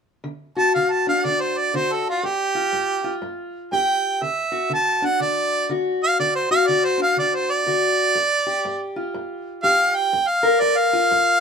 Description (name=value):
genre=acoustic country blues, solo or duo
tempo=122 BPM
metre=4/4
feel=swing 61% on 8ths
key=unclear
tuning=A4 = 440 Hz
part: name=fingerpicked steel-string acoustic guitar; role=accompaniment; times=0.2-11.4 s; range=G2 to Bb4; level=-24 LUFS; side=left 3 dB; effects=none
part: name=warm harmonica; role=melody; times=0.6-11.4 s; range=F4 to A5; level=-19 LUFS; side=right 2 dB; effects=none
room=light reverb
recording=minimal, uncompressed stereo recording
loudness=-18 LUFS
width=side -6 dB against mid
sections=0.3-11.4 A section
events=harmonica solo 0.3-11.4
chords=0.3 D; 2.2 Fsus2/G; 4.2 D; 8.2 G5; 10.1 Gm7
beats=| 0.25 0.75 1.25 1.74 | 2.24 2.73 3.23 3.72 | 4.22 4.71 5.21 5.70 | 6.19 6.69 7.18 7.67 | 8.16 8.65 9.15 9.64 | 10.13 10.62 11.11